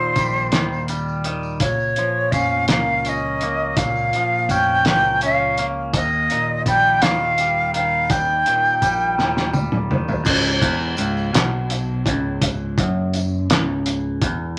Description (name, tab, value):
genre	psychedelic rock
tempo	56 BPM (dotted quarters)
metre	6/8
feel	straight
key	Db lydian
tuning	A4 = 440 Hz
part	bright jazz flute	melody	0.0-9.5 s	C5 to G5	-21 LUFS	equal	none
part	twangy electric guitar	riff	0.0-14.6 s	Db2 to Db4	-26 LUFS	equal	phaser
part	picked electric bass	bass	0.2-14.6 s	Db1 to Eb2	-31 LUFS	equal	none
part	cloth-damped thuddy drum kit	drums	0.2-14.4 s	crash cymbal, hi-hat, kick drum, snare drum, toms	-23 LUFS	equal	none
part	tambourine	percussion	0.2-14.0 s	none	-42 LUFS	equal	none
room	moderate small room reverb, RT60 0.5 s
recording	none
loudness	-20 LUFS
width	mono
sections	0.0-10.3 A section; 10.3-14.6 B section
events	drum fill 9.2-10.3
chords	0.0 Eb; 1.6 Bbm; 5.9 Ebadd9; 10.3 Dbm7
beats	0.53 | 1.61 2.69 | 3.78 4.86 | 5.94 7.02 | 8.10 9.18 | 10.27 11.35 | 12.43 13.51